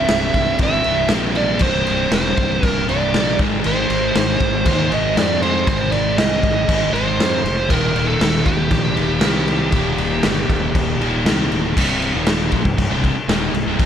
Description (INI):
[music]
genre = hard rock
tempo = 118 BPM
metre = 4/4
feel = straight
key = unclear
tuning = A4 = 442 Hz
[part]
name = biting lead guitar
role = melody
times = 0.0-11.2 s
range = G4 to E5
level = -21 LUFS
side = right 3 dB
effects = overdrive, analog delay
[part]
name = overdriven electric guitar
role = riff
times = 0.0-13.9 s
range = C2 to Ab3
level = -21 LUFS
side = equal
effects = none
[part]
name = fuzz fingered electric bass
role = bass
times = 0.0-13.9 s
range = C1 to F2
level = -24 LUFS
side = equal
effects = overdrive
[part]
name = raw garage drum kit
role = drums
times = 0.1-13.9 s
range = crash cymbal, kick drum, snare drum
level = -19 LUFS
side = left 1 dB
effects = none
[sound]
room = small room ambience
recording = none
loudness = -15 LUFS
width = side -9 dB against mid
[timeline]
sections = 0.0-11.8 A section; 11.8-13.9 B section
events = none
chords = 0.0 C; 3.4 Ab; 7.7 Eb; 11.8 C5